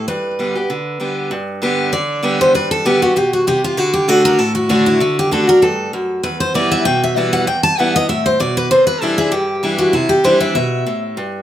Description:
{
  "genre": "bluegrass",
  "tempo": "195 BPM",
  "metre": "4/4",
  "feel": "swing 54% on 8ths",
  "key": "G major",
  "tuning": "A4 = 439 Hz",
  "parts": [
    { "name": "picked steel-string acoustic guitar", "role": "melody", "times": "0.0-11.0 s", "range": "D4 to A5", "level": "-16 LUFS", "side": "equal", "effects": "tape echo" },
    { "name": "picked steel-string acoustic guitar", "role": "accompaniment", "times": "0.0-11.4 s", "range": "E2 to G4", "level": "-16 LUFS", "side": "equal", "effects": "none" }
  ],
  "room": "wet studio reverb, RT60 0.6 s",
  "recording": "none",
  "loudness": "-13 LUFS",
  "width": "side -11 dB against mid",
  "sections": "0.0-1.3 A section; 1.3-11.4 B section",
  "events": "steel-string acoustic guitar solo 1.3-11.4",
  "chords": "0.1 G; 3.8 D; 6.2 Em; 8.7 Cadd9",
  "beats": "| 0.08 0.39 0.69 1.00 | 1.31 1.62 1.93 2.23 | 2.54 2.85 3.16 3.47 | 3.78 4.08 4.39 4.70 | 5.01 5.32 5.62 5.93 | 6.24 6.55 6.86 7.17 | 7.47 7.78 8.09 8.40 | 8.71 9.02 9.32 9.63 | 9.94 10.25 10.56 10.87 | 11.17"
}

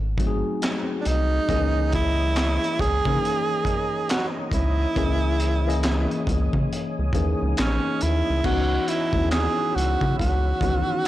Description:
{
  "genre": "R&B, neo-soul",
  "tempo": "69 BPM",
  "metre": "4/4",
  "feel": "swing 62% on 16ths",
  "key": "C# dorian",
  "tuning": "A4 = 440 Hz",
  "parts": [
    { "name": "rubbery square bass", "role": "bass", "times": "0.0-10.8 s", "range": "G#1 to C#3", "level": "-24 LUFS", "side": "equal", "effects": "tube saturation" },
    { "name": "tine electric piano", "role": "accompaniment", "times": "0.2-11.1 s", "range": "D#3 to D#5", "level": "-28 LUFS", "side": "left 4 dB", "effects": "phaser" },
    { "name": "crunchy breakbeat drum kit", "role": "drums", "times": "0.2-11.1 s", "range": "crash cymbal, handclaps, hi-hat, kick drum, snare drum", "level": "-28 LUFS", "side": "equal", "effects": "none" },
    { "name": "warm tenor saxophone", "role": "melody", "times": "1.0-11.1 s", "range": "C#4 to G#4", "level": "-25 LUFS", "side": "right 3 dB", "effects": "none" },
    { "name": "percussive tonewheel organ", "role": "sustained chords", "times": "1.5-11.1 s", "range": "C#5 to E6", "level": "-36 LUFS", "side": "right 2 dB", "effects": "slow rotary speaker, chorus vibrato" }
  ],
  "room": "light reverb, small room ambience",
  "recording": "blown-out, overdriven recording, overdrive",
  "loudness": "-20 LUFS",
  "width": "side -14 dB against mid",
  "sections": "0.0-8.4 A section; 8.4-11.1 B section",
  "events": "none",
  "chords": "0.0 G#7b9; 1.5 C#m69; 8.4 C#m11",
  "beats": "0.61 | 1.48 2.35 3.22 4.09 | 4.96 5.83 6.70 7.57 | 8.44 9.31 10.18 11.05"
}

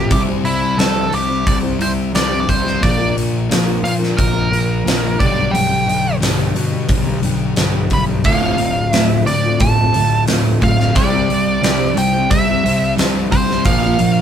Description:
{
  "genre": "quiet-loud alternative rock",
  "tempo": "89 BPM",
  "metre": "4/4",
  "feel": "straight",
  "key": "unclear",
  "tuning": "A4 = 439 Hz",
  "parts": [
    { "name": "nasal lead guitar with a parked wah", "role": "melody", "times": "0.0-14.2 s", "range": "E4 to B5", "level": "-19 LUFS", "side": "right 1 dB", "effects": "overdrive" },
    { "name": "fingerpicked steel-string acoustic guitar", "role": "arpeggios", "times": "0.0-14.2 s", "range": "D2 to C5", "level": "-23 LUFS", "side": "right 1 dB", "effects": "none" },
    { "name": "thick fuzz guitar", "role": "riff", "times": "0.0-14.2 s", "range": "D2 to C4", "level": "-21 LUFS", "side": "left 7 dB", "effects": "distortion" },
    { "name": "fuzz picked electric bass", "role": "bass", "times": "0.0-14.2 s", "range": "D1 to B2", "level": "-22 LUFS", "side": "equal", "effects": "overdrive" },
    { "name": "huge arena drum kit", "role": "drums", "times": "0.1-14.1 s", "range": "hi-hat, kick drum, snare drum", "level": "-19 LUFS", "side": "equal", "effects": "none" },
    { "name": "biting overdriven guitar", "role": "riff", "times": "8.2-14.2 s", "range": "D2 to C4", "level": "-21 LUFS", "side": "right 9 dB", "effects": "none" }
  ],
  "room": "light reverb",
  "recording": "band playing live in one room",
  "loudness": "-13 LUFS",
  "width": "side -8 dB against mid",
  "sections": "0.0-14.2 A section",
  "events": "lead electric guitar solo 0.0-14.2",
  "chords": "0.1 C; 2.8 Bb; 5.2 G/B; 8.2 Dm7; 10.9 Cadd9; 13.6 Bb",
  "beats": "| 0.12 0.79 1.47 2.15 | 2.83 3.50 4.18 4.86 | 5.53 6.21 6.89 7.56 | 8.24 8.92 9.59 10.27 | 10.94 11.62 12.29 12.97 | 13.65"
}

